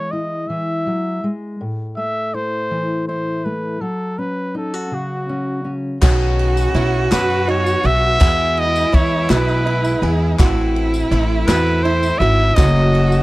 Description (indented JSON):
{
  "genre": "indie folk with a building arrangement",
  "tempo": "55 BPM (dotted quarters)",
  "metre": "6/8",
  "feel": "straight",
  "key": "E major",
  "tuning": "A4 = 440 Hz",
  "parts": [
    { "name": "warm trumpet", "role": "melody", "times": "0.0-13.2 s", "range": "F#4 to E5", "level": "-20 LUFS", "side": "equal", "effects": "none" },
    { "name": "fingerpicked steel-string acoustic guitar", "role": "accompaniment", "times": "0.0-8.2 s", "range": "A2 to F#4", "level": "-24 LUFS", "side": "left 1 dB", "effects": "none" },
    { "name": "rich cello", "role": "second line", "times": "6.0-13.2 s", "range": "E4 to F#4", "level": "-23 LUFS", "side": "right 3 dB", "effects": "none" },
    { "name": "picked swing-style acoustic guitar", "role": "accompaniment", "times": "6.0-13.2 s", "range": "F#2 to A4", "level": "-25 LUFS", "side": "left 4 dB", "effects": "none" },
    { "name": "pedal harmonium", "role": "sustained chords", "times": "6.0-13.2 s", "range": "C#3 to F#4", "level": "-31 LUFS", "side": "left 1 dB", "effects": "none" },
    { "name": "open-back banjo", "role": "arpeggios", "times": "6.0-13.2 s", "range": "D#4 to G#4", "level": "-25 LUFS", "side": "right 6 dB", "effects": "none" },
    { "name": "upright bass", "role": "bass", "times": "6.0-13.2 s", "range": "F#1 to F#2", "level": "-18 LUFS", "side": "equal", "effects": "none" },
    { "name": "unplugged drum kit", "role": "drums", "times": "6.0-13.1 s", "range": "crash cymbal, kick drum, ride cymbal, snare drum", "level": "-18 LUFS", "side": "equal", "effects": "none" },
    { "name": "group handclap", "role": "percussion", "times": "6.0-13.0 s", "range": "none", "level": "-30 LUFS", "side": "left 2 dB", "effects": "none" },
    { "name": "tambourine", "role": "percussion", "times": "6.0-13.2 s", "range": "none", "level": "-36 LUFS", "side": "left 6 dB", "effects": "none" }
  ],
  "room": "little or no reverb",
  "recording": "dry, close 1970s-style studio recording",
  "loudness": "-15 LUFS",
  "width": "side -18 dB against mid",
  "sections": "0.0-6.0 A section; 6.0-13.2 B section",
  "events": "none",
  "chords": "0.0 E; 1.6 Am; 3.8 F#5; 6.0 Badd9; 8.2 E; 10.4 Am; 12.6 F#m"
}